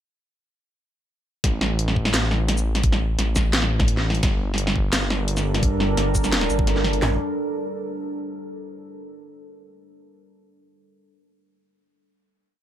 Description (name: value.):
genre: half-time drum and bass.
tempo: 172 BPM.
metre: 4/4.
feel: half-time.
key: unclear.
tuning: A4 = 439 Hz.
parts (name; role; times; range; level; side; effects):
dark detuned saw bass; bass; 1.4-7.2 s; G1 to A1; -23 LUFS; equal; none.
drum and bass drum kit; drums; 1.4-7.1 s; handclaps, kick drum, snare drum, toms; -22 LUFS; equal; none.
drum and bass drum kit; drums; 1.4-7.0 s; hi-hat, shaker, snare drum; -24 LUFS; equal; none.
deep dark ambient pad; sustained chords; 5.0-7.2 s; G3 to Bb4; -27 LUFS; right 2 dB; chorus, built-in reverb, sidechain pumping.
room: light reverb.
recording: none.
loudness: -20 LUFS.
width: side -11 dB against mid.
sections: 1.4-7.0 drop; 7.0-8.4 final chord.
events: drop 1.4-7.0.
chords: 1.4 N.C.; 4.2 Gm; 7.0 Am.